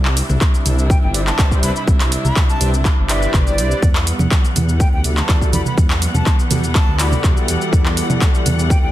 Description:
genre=afro house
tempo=123 BPM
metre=4/4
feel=straight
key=E minor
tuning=A4 = 439 Hz
part: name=warm chamber string section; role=sustained chords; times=0.0-8.9 s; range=C3 to F#5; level=-25 LUFS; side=right 1 dB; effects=sidechain pumping
part: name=dark detuned saw bass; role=bass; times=0.0-8.9 s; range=G1 to E2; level=-19 LUFS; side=equal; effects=sidechain pumping
part: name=house drum kit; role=drums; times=0.1-8.8 s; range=handclaps, hi-hat, shaker, toms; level=-21 LUFS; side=equal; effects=overdrive
part: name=electronic kick drum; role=drums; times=0.4-8.8 s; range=none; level=-15 LUFS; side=equal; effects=overdrive
part: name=bright silver concert flute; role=melody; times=0.9-8.9 s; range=D5 to B5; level=-27 LUFS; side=equal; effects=tape echo
part: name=mellow synth brass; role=stabs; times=1.1-8.9 s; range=E4 to D5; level=-26 LUFS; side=left 2 dB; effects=chorus, sidechain pumping, tape echo
part: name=congas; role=percussion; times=4.2-8.6 s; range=none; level=-24 LUFS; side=right 4 dB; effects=none
room=little or no reverb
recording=dense, heavily limited modern master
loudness=-13 LUFS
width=side -14 dB against mid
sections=0.0-8.9 A section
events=none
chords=0.0 Cmaj9; 3.8 Em11

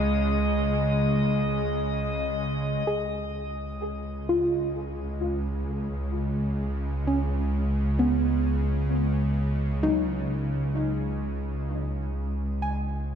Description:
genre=ambient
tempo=65 BPM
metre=3/4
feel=straight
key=unclear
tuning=A4 = 440 Hz
part: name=warm studio double bass section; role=bass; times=0.0-13.2 s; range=Db2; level=-28 LUFS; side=equal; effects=none
part: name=bowed-like drone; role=drone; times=0.0-13.2 s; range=Db3 to Ab3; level=-30 LUFS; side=right 1 dB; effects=built-in reverb
part: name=drifting glass-harmonics texture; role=texture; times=0.0-2.9 s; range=Eb5 to Eb6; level=-32 LUFS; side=left 4 dB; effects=chorus, built-in reverb, shimmer reverb
part: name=soft round pluck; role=arpeggios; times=2.9-13.2 s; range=Gb3 to Ab5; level=-29 LUFS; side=equal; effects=chorus, diffuse ambient delay, shimmer reverb
room=wet concert hall reverb, RT60 2.1 s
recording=dark, warm production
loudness=-24 LUFS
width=side -8 dB against mid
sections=0.0-2.9 A section; 2.9-13.2 B section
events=fade-in on synth drone 2.9-13.2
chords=0.0 Db5; 2.9 Cb/Db

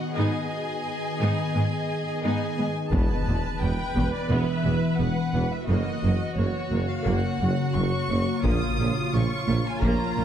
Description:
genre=cinematic, hybrid orchestral and electronic film score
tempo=87 BPM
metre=4/4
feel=straight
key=unclear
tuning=A4 = 439 Hz
part: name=rich chamber violin section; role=melody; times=0.0-10.2 s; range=C#5 to D#6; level=-33 LUFS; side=left 1 dB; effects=none
part: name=rich studio violin section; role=second line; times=0.0-2.7 s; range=F#4 to D#5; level=-34 LUFS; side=left 2 dB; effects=none
part: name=glassy FM pad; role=sustained chords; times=0.0-10.2 s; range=C#3 to D#5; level=-29 LUFS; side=left 1 dB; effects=ensemble chorus, built-in reverb
part: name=clear symphonic viola section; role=accompaniment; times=0.2-10.2 s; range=A#3 to B4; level=-31 LUFS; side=right 1 dB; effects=none
part: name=clear symphonic cello section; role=bass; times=0.2-10.2 s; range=E2 to A#2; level=-29 LUFS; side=right 1 dB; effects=none
part: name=rich symphonic double bass section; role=bass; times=2.9-10.2 s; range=E1 to A#1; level=-30 LUFS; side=right 2 dB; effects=none
part: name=warm tuba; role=bass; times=2.9-10.2 s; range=E1 to A#1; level=-32 LUFS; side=right 3 dB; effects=none
part: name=taiko ensemble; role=drums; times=2.9-4.3, 8.5-10.2 s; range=none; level=-29 LUFS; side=left 1 dB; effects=none
part: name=impact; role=sound effects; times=2.9-5.7 s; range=none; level=-30 LUFS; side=left 1 dB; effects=none
room=moderate concert hall reverb, RT60 2.2 s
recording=none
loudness=-23 LUFS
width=side -9 dB against mid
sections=0.0-2.9 A section; 2.9-10.2 B section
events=impact 2.9-5.7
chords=0.2 G#m; 2.9 E5; 5.7 F#; 8.4 A#m

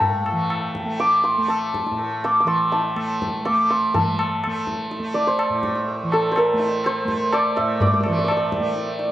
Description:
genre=indian classical, Hindustani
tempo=124 BPM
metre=4/4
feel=straight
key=A raga bhairavi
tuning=A4 = 442 Hz
part: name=santur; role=melody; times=0.0-9.1 s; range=A4 to D6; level=-20 LUFS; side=equal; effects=analog delay
part: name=tanpura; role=drone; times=0.0-9.1 s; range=A2 to A3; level=-27 LUFS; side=right 1 dB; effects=none
part: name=tabla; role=percussion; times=0.0-9.1 s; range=none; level=-27 LUFS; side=left 2 dB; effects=none
room=moderate spring reverb, RT60 1.4 s, small room ambience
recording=cassette tape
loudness=-19 LUFS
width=side -13 dB against mid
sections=0.0-3.9 A section; 3.9-9.1 B section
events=speeding up 0.0-9.1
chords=none

